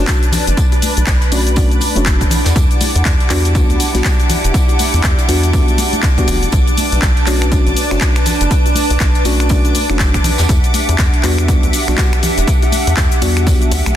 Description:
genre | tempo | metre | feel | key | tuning
deep house | 121 BPM | 4/4 | swing 60% on 16ths | unclear | A4 = 441 Hz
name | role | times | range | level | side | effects
hollow soft pad | sustained chords | 0.0-14.0 s | D4 to B5 | -23 LUFS | equal | ensemble chorus, sidechain pumping
deep mellow chord stab | stabs | 0.0-13.7 s | G3 to F#4 | -22 LUFS | left 1 dB | chorus, sidechain pumping, dub echo
rubbery square bass | bass | 0.0-13.9 s | E1 to E2 | -16 LUFS | equal | sidechain pumping
bright chamber violin section | texture | 0.0-14.0 s | D4 to D6 | -24 LUFS | equal | none
granular cloud pad | texture | 0.0-14.0 s | D4 to A5 | -25 LUFS | right 2 dB | built-in reverb, sidechain pumping
deep reggae drum kit | drums | 0.1-13.9 s | hi-hat, snare drum, tambourine | -29 LUFS | right 1 dB | high-pass filter on hats, high-pass filter on snare, high-pass filter on perc, high-pass filter on room
electronic kick drum | drums | 0.1-13.6 s | none | -14 LUFS | equal | none
house drum kit | drums | 0.1-13.9 s | finger snaps, handclaps, hi-hat, shaker | -20 LUFS | left 2 dB | none
congas and bongos | percussion | 0.3-13.9 s | none | -25 LUFS | left 2 dB | none
room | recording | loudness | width
studio reverb | dense, heavily limited modern master | -11 LUFS | side -11 dB against mid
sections
0.0-14.0 A section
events
none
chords
0.0 Bm9; 2.3 Em9; 6.5 Bm9; 10.2 Em9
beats
0.08 | 0.57 1.07 1.57 2.06 | 2.56 3.06 3.55 4.05 | 4.54 5.04 5.53 6.03 | 6.53 7.02 7.52 8.01 | 8.51 9.01 9.50 10.00 | 10.49 10.99 11.48 11.98 | 12.48 12.97 13.47

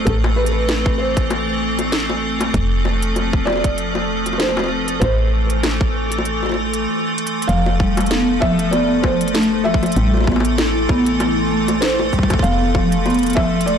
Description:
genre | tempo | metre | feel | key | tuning
IDM | 97 BPM | 4/4 | swing 56% on 16ths | F lydian | A4 = 440 Hz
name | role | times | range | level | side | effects
felt-muted upright piano | melody | 0.0-13.8 s | A4 to F5 | -24 LUFS | right 2 dB | tape echo
icy glass pad | sustained chords | 0.0-13.8 s | E3 to C6 | -21 LUFS | left 1 dB | chorus, built-in reverb
woody FM bass | bass | 0.0-13.8 s | F1 to A1 | -22 LUFS | equal | tube saturation
electronic kick drum | drums | 0.1-13.5 s | none | -18 LUFS | equal | overdrive
organic electronic drum kit | drums | 0.1-13.8 s | bongos, cabasa, hi-hat, snare drum | -23 LUFS | left 2 dB | overdrive, tape echo
vibraphone with soft mallets | arpeggios | 7.5-13.8 s | F3 to E4 | -19 LUFS | equal | tape echo
room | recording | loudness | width
light reverb, digital ambience | blown-out, overdriven recording, overdrive | -15 LUFS | side -8 dB against mid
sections
0.0-7.5 A section; 7.5-13.8 B section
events
drum fill 7.2-7.5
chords
0.1 Am; 2.5 F; 5.0 Am; 7.5 F; 10.0 Am; 12.4 F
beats
| 0.07 0.69 1.30 1.92 | 2.54 3.16 3.78 4.40 | 5.02 5.63 6.25 6.87 | 7.49 8.11 8.73 9.35 | 9.96 10.58 11.20 11.82 | 12.44 13.06 13.68

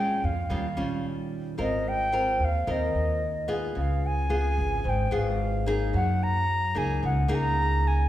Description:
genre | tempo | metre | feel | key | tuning
bossa nova | 110 BPM | 4/4 | straight | unclear | A4 = 438 Hz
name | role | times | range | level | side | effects
concert flute | melody | 0.0-8.1 s | Eb5 to Bb5 | -28 LUFS | equal | none
nylon-string guitar | accompaniment | 0.0-8.1 s | Ab2 to Bb4 | -30 LUFS | left 1 dB | none
upright bass | bass | 0.0-8.1 s | Ab1 to Gb2 | -27 LUFS | equal | none
room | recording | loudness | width
wet recital hall reverb, RT60 1.7 s | recorded in a church or concert hall | -24 LUFS | side -13 dB against mid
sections
0.0-1.6 A section; 1.6-8.1 B section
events
none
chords
0.0 Bbm7; 0.5 Eb9; 1.6 Ab69; 3.8 Db7; 5.9 Gb69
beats
0.50 1.04 | 1.59 2.13 2.68 3.22 | 3.76 4.31 4.85 5.39 | 5.94 6.48 7.02 7.57

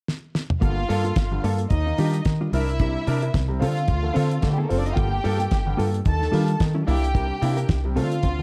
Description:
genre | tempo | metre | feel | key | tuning
disco | 110 BPM | 4/4 | swing 56% on 16ths | G minor | A4 = 440 Hz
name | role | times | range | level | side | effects
damped 70s drum kit | drums | 0.1-8.4 s | hi-hat, kick drum, snare drum, toms | -28 LUFS | equal | none
warm studio violin section | second line | 0.6-8.4 s | G3 to A5 | -31 LUFS | equal | none
clear concert grand piano | accompaniment | 0.6-8.4 s | G2 to Bb4 | -31 LUFS | equal | none
mellow electric guitar | accompaniment | 0.6-8.4 s | G3 to Bb4 | -33 LUFS | equal | none
overdriven picked electric bass | bass | 0.6-8.4 s | F#1 to Eb3 | -26 LUFS | equal | none
room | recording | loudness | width
small room ambience | dark, warm production | -23 LUFS | mono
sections
0.6-8.4 A section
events
drum fill 0.1-0.6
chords
0.0 N.C.; 0.6 Gm9; 1.7 Ebmaj9; 2.5 C9; 3.6 Dm7; 5.0 Gm9; 6.1 Ebmaj9; 6.9 C9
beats
0.07 | 0.62 1.16 1.71 2.25 | 2.80 3.34 3.88 4.43 | 4.97 5.52 6.06 6.60 | 7.15 7.69 8.24

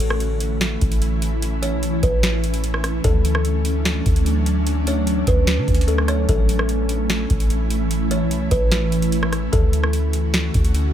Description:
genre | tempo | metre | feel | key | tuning
hip hop, atmospheric cloud-rap | 148 BPM | 4/4 | half-time | A major | A4 = 441 Hz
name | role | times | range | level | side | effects
kalimba | melody | 0.0-10.9 s | A4 to C#5 | -27 LUFS | left 1 dB | low-pass filter, ping-pong delay
ethereal airy pad | sustained chords | 0.0-10.9 s | D3 to F#4 | -24 LUFS | equal | ensemble chorus, built-in reverb, sidechain pumping
soft 808-style bass | bass | 0.0-10.9 s | A1 to D3 | -21 LUFS | equal | none
booming analog drum machine | drums | 0.0-10.8 s | hi-hat, kick drum, rim click, snare drum | -21 LUFS | equal | none
room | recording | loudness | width
digital ambience | none | -17 LUFS | side -10 dB against mid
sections
0.0-10.9 A section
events
none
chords
0.0 A; 3.0 Dmaj7; 6.3 A; 9.5 Dmaj7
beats
0.20 0.61 1.02 | 1.42 1.83 2.23 2.64 | 3.04 3.45 3.85 4.26 | 4.67 5.07 5.48 5.88 | 6.29 6.69 7.10 7.50 | 7.91 8.31 8.72 9.12 | 9.53 9.94 10.34 10.75

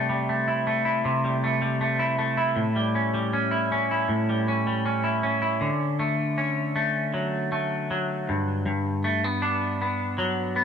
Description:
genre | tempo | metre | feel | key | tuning
indie pop | 79 BPM | 4/4 | straight | D major | A4 = 440 Hz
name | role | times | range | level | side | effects
clean electric guitar | solo | 0.0-10.6 s | G2 to E4 | -23 LUFS | equal | wide subtle chorus, vibrato effect, low-pass filter, tape echo
room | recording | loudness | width
light reverb | none | -23 LUFS | side -7 dB against mid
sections
0.0-5.6 A section; 5.6-10.6 B section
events
none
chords
0.0 C6; 2.6 A7; 5.6 Dmaj7; 8.3 Gmaj7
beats
0.30 1.06 1.82 | 2.58 3.34 4.10 4.86 | 5.62 6.38 7.13 7.89 | 8.65 9.41 10.17

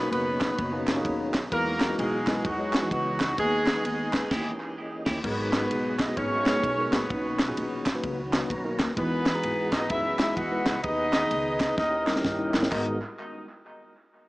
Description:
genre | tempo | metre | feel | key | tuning
uptempo gospel | 129 BPM | 4/4 | swing 62% on 8ths | G# minor | A4 = 440 Hz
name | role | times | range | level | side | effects
mellow horn section | melody | 0.0-13.0 s | F#3 to F#5 | -28 LUFS | equal | analog delay
tine electric piano | accompaniment | 0.0-13.0 s | G#1 to A#5 | -32 LUFS | left 1 dB | medium stereo tremolo, analog delay
tonewheel organ | sustained chords | 0.0-13.0 s | B2 to A#5 | -35 LUFS | equal | chorus vibrato, slow rotary speaker
upright bass | bass | 0.0-13.0 s | F#1 to G#2 | -35 LUFS | equal | none
tight funk drum kit | drums | 0.1-12.9 s | crash cymbal, kick drum, ride cymbal, snare drum | -30 LUFS | equal | none
group handclap | percussion | 0.4-13.0 s | none | -37 LUFS | right 2 dB | analog delay
clean electric guitar | second line | 4.3-5.2 s | E4 to G4 | -38 LUFS | right 2 dB | analog delay
room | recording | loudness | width
light reverb | echo-heavy mix, small speaker sound | -24 LUFS | side -20 dB against mid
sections
0.0-5.2 A section; 5.2-12.7 B section; 12.7-14.3 C section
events
band accent 4.3-5.2; tonewheel organ fill 8.0-9.0; drum fill 11.8-12.7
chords
0.0 Bmaj9; 1.5 Emaj9; 3.4 G#m/D#; 4.3 D#7b9; 5.2 G#m9; 7.1 Bmaj9; 9.0 Emaj9; 10.8 G#m/D#; 11.8 D#7b9; 12.7 G#m9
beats
0.12 0.59 1.05 | 1.52 1.99 2.45 2.92 | 3.38 3.85 4.31 4.78 | 5.24 5.71 6.17 6.64 | 7.10 7.57 8.04 8.50 | 8.97 9.44 9.90 10.37 | 10.84 11.31 11.78 12.25 | 12.72

